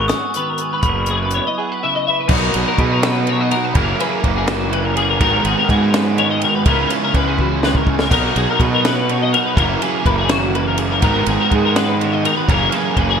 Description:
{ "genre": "math rock and midwest emo", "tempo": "82 BPM (dotted quarters)", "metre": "6/8", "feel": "straight", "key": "B major", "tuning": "A4 = 440 Hz", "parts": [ { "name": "glockenspiel with hard plastic mallets", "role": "melody", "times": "0.0-1.8 s", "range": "B5 to D#6", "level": "-26 LUFS", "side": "left 1 dB", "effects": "none" }, { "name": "clean electric guitar", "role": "accompaniment", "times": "0.0-13.2 s", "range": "G#2 to B4", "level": "-24 LUFS", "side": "right 6 dB", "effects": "ensemble chorus" }, { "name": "twelve-string electric guitar", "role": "arpeggios", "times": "0.0-13.2 s", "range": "F#4 to F#5", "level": "-20 LUFS", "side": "left 6 dB", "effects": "ensemble chorus" }, { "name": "fuzz fingered electric bass", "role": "bass", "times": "0.0-13.2 s", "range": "F#1 to B2", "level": "-20 LUFS", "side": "equal", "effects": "overdrive" }, { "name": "compact cocktail drum kit", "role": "drums", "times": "0.1-13.1 s", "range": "crash cymbal, hi-hat, kick drum, ride cymbal, snare drum", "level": "-20 LUFS", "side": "equal", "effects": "none" }, { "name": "overdriven electric guitar", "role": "riff", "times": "2.3-13.2 s", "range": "F#2 to F#4", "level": "-21 LUFS", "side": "right 2 dB", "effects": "none" } ], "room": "moderate plate reverb, RT60 1.3 s, studio ambience", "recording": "bright 1980s-style digital production", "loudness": "-14 LUFS", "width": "side -7 dB against mid", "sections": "0.0-2.3 A section; 2.3-13.2 B section", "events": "drum fill 7.4-8.1", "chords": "0.0 G#m7; 0.8 F#7sus4; 2.3 Bmaj7; 3.7 F#9sus4; 5.2 G#m9; 6.7 C#m9; 8.1 Bmaj7; 9.6 F#9sus4; 11.0 G#m9; 12.5 F#9sus4" }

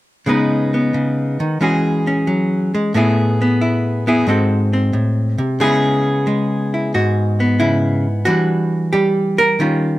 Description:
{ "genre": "solo jazz", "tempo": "90 BPM", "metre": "4/4", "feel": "swing 69% on 8ths", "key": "C# minor", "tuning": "A4 = 440 Hz", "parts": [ { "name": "archtop guitar, miked and amplified", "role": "solo", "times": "0.3-10.0 s", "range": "G#2 to B4", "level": "-14 LUFS", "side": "equal", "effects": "none" } ], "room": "little or no reverb", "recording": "close, detailed microphones", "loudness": "-14 LUFS", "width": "side -16 dB against mid", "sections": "0.3-5.6 A section; 5.6-10.0 B section", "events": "none", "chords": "0.3 C#sus2; 1.6 E69; 2.9 Asus2; 4.3 G#7b9; 5.6 C#m7; 8.3 Em7" }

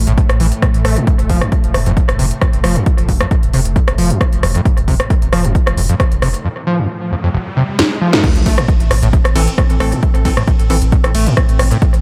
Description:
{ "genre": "driving peak-time techno", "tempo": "134 BPM", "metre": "4/4", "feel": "straight", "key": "A minor", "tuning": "A4 = 441 Hz", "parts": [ { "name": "saturated sub bass", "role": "bass", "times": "0.0-12.0 s", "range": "F1 to A1", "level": "-19 LUFS", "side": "equal", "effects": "tube saturation, sidechain pumping, low-pass filter" }, { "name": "swarming drone", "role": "drone", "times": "0.0-12.0 s", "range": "A2 to C4", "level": "-28 LUFS", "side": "equal", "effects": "none" }, { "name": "overdriven acid bass", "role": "riff", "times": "0.1-11.9 s", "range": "F1 to A3", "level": "-20 LUFS", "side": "equal", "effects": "distortion, ensemble chorus, cassette tape, sidechain pumping, analog delay" }, { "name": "techno drum kit", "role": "drums", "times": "0.1-12.0 s", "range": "crash cymbal, hi-hat, ride cymbal, rim click, snare drum", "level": "-22 LUFS", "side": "equal", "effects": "sidechain pumping on hats, sidechain pumping on cymbals, analog delay" }, { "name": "electronic kick drum", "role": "drums", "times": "0.2-11.9 s", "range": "none", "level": "-16 LUFS", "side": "equal", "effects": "none" }, { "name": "riser and sub drop", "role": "sound effects", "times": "6.2-10.0 s", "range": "none", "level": "-27 LUFS", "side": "equal", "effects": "none" }, { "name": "wavetable chord stab", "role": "stabs", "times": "9.4-10.8 s", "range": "E3 to A4", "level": "-24 LUFS", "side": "equal", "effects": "sidechain pumping, analog delay" } ], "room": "light reverb", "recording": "echo-heavy mix", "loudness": "-14 LUFS", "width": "mono", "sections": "0.0-8.2 A section; 8.2-12.0 B section", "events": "riser 6.2-8.2; drum fill 7.8-8.2; band accent 8.1; drop 8.2-12.0; impact 8.2-10.0", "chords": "0.0 A5; 1.1 F5; 8.2 Am" }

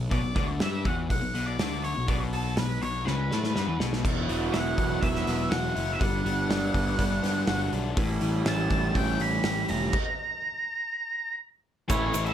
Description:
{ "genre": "indie rock", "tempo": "122 BPM", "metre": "4/4", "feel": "straight", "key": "B minor", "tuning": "A4 = 436 Hz", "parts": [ { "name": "crunchy overdriven guitar", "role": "riff", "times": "0.0-12.2 s", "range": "G2 to F#4", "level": "-32 LUFS", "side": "right 6 dB", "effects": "lush chorus" }, { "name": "overdriven electric guitar", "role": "riff", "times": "0.0-12.3 s", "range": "E2 to G4", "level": "-32 LUFS", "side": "left 6 dB", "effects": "none" }, { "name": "fuzz picked electric bass", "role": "bass", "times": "0.0-12.3 s", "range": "E1 to A2", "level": "-31 LUFS", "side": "equal", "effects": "overdrive" }, { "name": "octave-fuzz lead guitar", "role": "melody", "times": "0.1-12.3 s", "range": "A4 to B5", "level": "-31 LUFS", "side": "equal", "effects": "distortion, slapback echo" }, { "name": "loose indie drum kit", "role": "drums", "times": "0.1-12.3 s", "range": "crash cymbal, hi-hat, kick drum, ride cymbal, snare drum", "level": "-30 LUFS", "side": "equal", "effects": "none" }, { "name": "egg shaker", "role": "percussion", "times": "11.9-12.3 s", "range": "none", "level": "-39 LUFS", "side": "right 11 dB", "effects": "none" } ], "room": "little or no reverb", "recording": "none", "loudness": "-25 LUFS", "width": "side -10 dB against mid", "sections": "0.0-4.0 A section; 4.0-11.9 B section", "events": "drum fill 3.1-4.0; stop 9.9-11.9", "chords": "0.0 Bm; 4.0 Esus2; 6.0 Gmaj7; 8.0 A7; 9.9 N.C." }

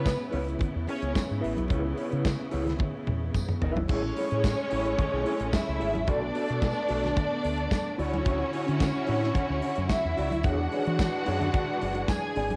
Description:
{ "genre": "disco", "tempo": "110 BPM", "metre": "4/4", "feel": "straight", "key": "unclear", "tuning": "A4 = 440 Hz", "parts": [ { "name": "warm symphonic string section", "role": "second line", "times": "0.0-12.6 s", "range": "B3 to G#5", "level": "-34 LUFS", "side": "equal", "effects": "cassette tape" }, { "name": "mellow electric guitar", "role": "accompaniment", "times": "0.0-12.6 s", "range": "D4 to E5", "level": "-36 LUFS", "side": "equal", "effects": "tremolo, cassette tape" }, { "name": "clear studio string section", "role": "sustained chords", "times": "0.0-12.6 s", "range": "C#3 to F#4", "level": "-36 LUFS", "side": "equal", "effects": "cassette tape" }, { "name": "deep dub fingered electric bass", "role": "bass", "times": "0.0-12.6 s", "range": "F#1 to E3", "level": "-34 LUFS", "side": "equal", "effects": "none" }, { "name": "modern studio drum kit", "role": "drums", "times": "0.1-12.6 s", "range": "crash cymbal, hi-hat, kick drum, snare drum, toms", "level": "-32 LUFS", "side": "equal", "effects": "cassette tape" }, { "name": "congas", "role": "percussion", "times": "0.1-12.6 s", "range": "none", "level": "-40 LUFS", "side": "equal", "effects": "none" }, { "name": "tambourine", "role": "percussion", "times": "0.1-12.2 s", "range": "none", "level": "-51 LUFS", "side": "equal", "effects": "none" } ], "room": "light reverb", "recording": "home recording on cassette", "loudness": "-28 LUFS", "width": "mono", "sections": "0.0-3.9 A section; 3.9-12.6 B section", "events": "drum fill 2.8-3.9", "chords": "0.0 C#m7; 6.1 Bm7; 8.0 Dmaj9; 10.4 E13" }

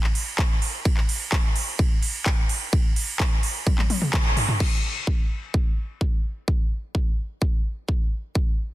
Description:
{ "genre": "EDM", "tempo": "128 BPM", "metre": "4/4", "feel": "straight", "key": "none", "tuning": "none", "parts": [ { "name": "big-room dance drum kit", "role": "drums", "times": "0.0-4.7 s", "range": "crash cymbal, handclaps, hi-hat, ride cymbal, toms", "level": "-26 LUFS", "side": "equal", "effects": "none" }, { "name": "electronic kick drum", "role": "drums", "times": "0.4-8.4 s", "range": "none", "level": "-22 LUFS", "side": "equal", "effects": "none" } ], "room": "digital ambience", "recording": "dense, heavily limited modern master, lossy compression artefacts", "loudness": "-21 LUFS", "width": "side -16 dB against mid", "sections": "0.0-4.6 A section; 4.6-8.7 B section", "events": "drop 0.0-4.6; drum fill 3.7-4.6; band accent 4.1", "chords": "none" }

